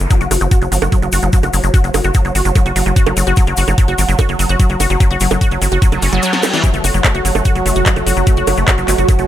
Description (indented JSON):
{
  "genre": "psychedelic trance",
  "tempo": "147 BPM",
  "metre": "4/4",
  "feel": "straight",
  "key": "unclear",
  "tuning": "A4 = 440 Hz",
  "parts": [
    { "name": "tight sequencer bass", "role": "bass", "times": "0.0-9.3 s", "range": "F#1 to G1", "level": "-17 LUFS", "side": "equal", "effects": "none" },
    { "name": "techno drum kit", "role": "drums", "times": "0.0-9.3 s", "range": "bongos, handclaps, hi-hat, snare drum", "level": "-20 LUFS", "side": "right 2 dB", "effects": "none" },
    { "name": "egg shaker", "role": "percussion", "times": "0.0-9.3 s", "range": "none", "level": "-26 LUFS", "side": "left 5 dB", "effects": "none" },
    { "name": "wide unison pluck", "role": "riff", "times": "0.1-9.2 s", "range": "E3 to F#4", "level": "-18 LUFS", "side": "moving between left 4 dB and right 4 dB", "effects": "auto-pan, sidechain pumping, dub echo" },
    { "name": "electronic kick drum", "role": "drums", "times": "0.1-9.2 s", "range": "none", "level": "-13 LUFS", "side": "equal", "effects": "none" },
    { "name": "reverse cymbal and zap", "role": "sound effects", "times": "6.0-6.6 s", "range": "none", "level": "-23 LUFS", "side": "equal", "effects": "none" },
    { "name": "bubbling stepped-filter texture", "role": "sustained chords", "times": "6.6-9.3 s", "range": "F#3 to F#4", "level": "-19 LUFS", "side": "right 2 dB", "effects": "chorus, built-in reverb, sidechain pumping" }
  ],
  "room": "digital ambience",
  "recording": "none",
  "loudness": "-11 LUFS",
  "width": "side -12 dB against mid",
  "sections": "0.0-9.3 A section",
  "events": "reverse cymbal 6.0-6.6; drum fill 6.3-6.6",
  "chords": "0.0 F#5"
}